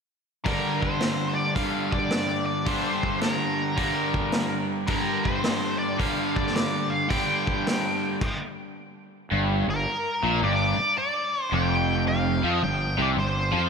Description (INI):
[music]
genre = blues rock power trio and southern rock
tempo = 108 BPM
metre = 4/4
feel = swing 66% on 8ths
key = G minor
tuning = A4 = 440 Hz
[part]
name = octave-fuzz lead guitar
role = melody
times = 0.4-13.7 s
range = Bb4 to G5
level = -28 LUFS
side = equal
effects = wah, distortion, slapback echo
[part]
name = crunchy overdriven guitar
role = riff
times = 0.4-13.7 s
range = F2 to G3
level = -26 LUFS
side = equal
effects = slapback echo
[part]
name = vintage drum kit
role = drums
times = 0.5-8.4 s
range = crash cymbal, hi-hat, kick drum, snare drum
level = -29 LUFS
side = equal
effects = none
[part]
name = fuzz fingered electric bass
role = bass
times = 9.3-13.7 s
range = F1 to F2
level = -26 LUFS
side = right 1 dB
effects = overdrive
[sound]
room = moderate lush hall reverb, RT60 3.0 s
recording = big arena sound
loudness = -23 LUFS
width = side -5 dB against mid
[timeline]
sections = 0.5-9.3 A section; 9.3-13.7 B section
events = stop 8.2-9.3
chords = 0.5 Gm; 8.2 N.C.; 9.3 G5